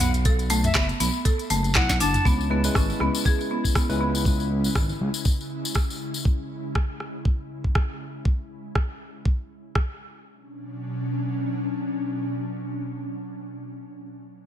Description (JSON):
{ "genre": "afro house", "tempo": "120 BPM", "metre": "4/4", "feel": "swing 56% on 16ths", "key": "B dorian", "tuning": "A4 = 439 Hz", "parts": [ { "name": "bright reedy jazz flute", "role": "melody", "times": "0.0-2.3 s", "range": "E5 to A5", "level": "-31 LUFS", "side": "left 1 dB", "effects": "ping-pong delay" }, { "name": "buzzing marimba with hard mallets", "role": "arpeggios", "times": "0.0-4.1 s", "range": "A3 to A4", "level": "-27 LUFS", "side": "right 1 dB", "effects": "sidechain pumping, low-pass filter, ping-pong delay" }, { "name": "smooth gliding synth bass", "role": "bass", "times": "0.0-5.1 s", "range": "F#1 to C#2", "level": "-25 LUFS", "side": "equal", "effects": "sidechain pumping" }, { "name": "afro-pop drum kit", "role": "drums", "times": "0.0-9.9 s", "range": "handclaps, hi-hat, rim click, snare drum, toms", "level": "-28 LUFS", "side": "equal", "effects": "studio reverb" }, { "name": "tambourine", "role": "percussion", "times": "0.0-6.2 s", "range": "none", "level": "-32 LUFS", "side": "left 7 dB", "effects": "none" }, { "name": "electronic kick drum", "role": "drums", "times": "0.3-9.9 s", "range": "none", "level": "-22 LUFS", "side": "equal", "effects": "studio reverb" }, { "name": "ethereal airy pad", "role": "sustained chords", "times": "3.1-13.6 s", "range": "B2 to E4", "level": "-32 LUFS", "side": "left 1 dB", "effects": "ensemble chorus, built-in reverb, sidechain pumping" }, { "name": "tine electric piano", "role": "stabs", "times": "2.5-4.5 s", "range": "G#3 to B4", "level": "-30 LUFS", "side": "left 2 dB", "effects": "medium stereo tremolo, sidechain pumping, low-pass filter, ping-pong delay" } ], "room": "light reverb", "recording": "none", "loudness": "-22 LUFS", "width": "side -10 dB against mid", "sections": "0.0-2.3 A section; 2.3-10.3 B section; 10.3-14.3 C section", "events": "drum fill 1.8-2.3; filter sweep on marimba 2.3-4.3", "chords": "0.0 B7(no3); 2.3 C#m7; 10.3 Bm" }